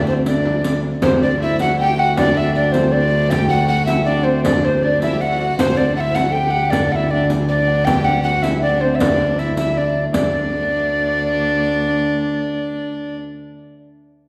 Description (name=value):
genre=medieval dance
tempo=158 BPM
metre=3/4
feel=straight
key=D mixolydian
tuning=A4 = 439 Hz
part: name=mellow hollow soprano recorder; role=melody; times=0.0-13.2 s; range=C5 to G5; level=-21 LUFS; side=equal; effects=none
part: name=concert harp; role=second line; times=0.0-13.4 s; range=C5 to A5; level=-29 LUFS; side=equal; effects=none
part: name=rich fiddle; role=second line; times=0.0-13.2 s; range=C4 to A4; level=-26 LUFS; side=equal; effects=none
part: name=rich viola da gamba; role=drone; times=0.0-13.2 s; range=D2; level=-24 LUFS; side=equal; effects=none
part: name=riq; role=percussion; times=0.1-10.3 s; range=none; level=-28 LUFS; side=equal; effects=none
part: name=frame drum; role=percussion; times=0.5-10.3 s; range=none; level=-27 LUFS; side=equal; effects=none
room=wet recital hall reverb, RT60 1.8 s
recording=heard from further back in the room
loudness=-17 LUFS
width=mono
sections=0.0-1.0 A section; 1.0-10.1 B section; 10.1-12.4 C section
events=none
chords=none